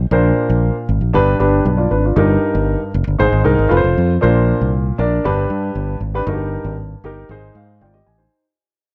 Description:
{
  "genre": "uptempo 1960s-style soul",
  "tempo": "117 BPM",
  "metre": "4/4",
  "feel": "straight",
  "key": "Bb mixolydian",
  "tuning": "A4 = 441 Hz",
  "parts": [
    { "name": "fingered electric bass", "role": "bass", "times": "0.0-8.3 s", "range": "F1 to Ab2", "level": "-20 LUFS", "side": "equal", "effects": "none" },
    { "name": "dark concert grand piano", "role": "accompaniment", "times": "0.1-8.4 s", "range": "G2 to Ab5", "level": "-19 LUFS", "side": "equal", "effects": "none" }
  ],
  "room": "light reverb",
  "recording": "none",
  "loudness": "-16 LUFS",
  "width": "mono",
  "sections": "0.0-4.2 A section; 4.2-8.3 B section",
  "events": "fade-out 4.2-8.3; grand piano fill 7.3-8.3",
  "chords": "0.1 Bbadd9; 1.1 G; 2.2 Eb/G; 3.2 Ab; 3.7 F; 4.2 Bbadd9; 5.2 G; 6.3 Eb/G; 7.3 Ab"
}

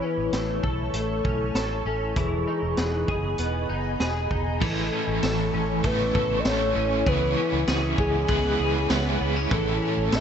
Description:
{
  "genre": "dream pop",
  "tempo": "98 BPM",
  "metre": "4/4",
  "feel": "straight",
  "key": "A lydian",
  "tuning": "A4 = 440 Hz",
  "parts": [
    { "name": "soft octave-layered synth lead", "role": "melody", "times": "0.0-10.2 s", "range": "G#4 to E5", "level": "-29 LUFS", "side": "equal", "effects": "chorus, tremolo, tape echo" },
    { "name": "ethereal airy pad", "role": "sustained chords", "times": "0.0-10.2 s", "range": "E4 to C#6", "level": "-32 LUFS", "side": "equal", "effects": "ensemble chorus, built-in reverb, phaser" },
    { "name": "twelve-string electric guitar", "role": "arpeggios", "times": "0.0-10.2 s", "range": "E3 to A4", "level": "-29 LUFS", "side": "left 3 dB", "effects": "ensemble chorus, tape echo" },
    { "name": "vintage muted fingered electric bass", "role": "bass", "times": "0.2-10.2 s", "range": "E1 to C#2", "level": "-29 LUFS", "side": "right 1 dB", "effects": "none" },
    { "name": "vintage drum kit", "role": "drums", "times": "0.3-10.2 s", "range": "crash cymbal, hi-hat, kick drum, ride cymbal, snare drum, tambourine", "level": "-29 LUFS", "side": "right 1 dB", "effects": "none" },
    { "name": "overdriven semi-hollow guitar", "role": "accompaniment", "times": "4.6-10.2 s", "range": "A2 to A4", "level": "-29 LUFS", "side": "right 2 dB", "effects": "tremolo, wide subtle chorus" }
  ],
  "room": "light reverb, small room ambience",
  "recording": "nothing above 8.0 kHz",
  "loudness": "-22 LUFS",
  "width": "side -8 dB against mid",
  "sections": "0.0-4.6 A section; 4.6-10.2 B section",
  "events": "none",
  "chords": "0.0 A; 2.2 Emaj7; 4.6 A; 7.1 C#m7; 9.5 A"
}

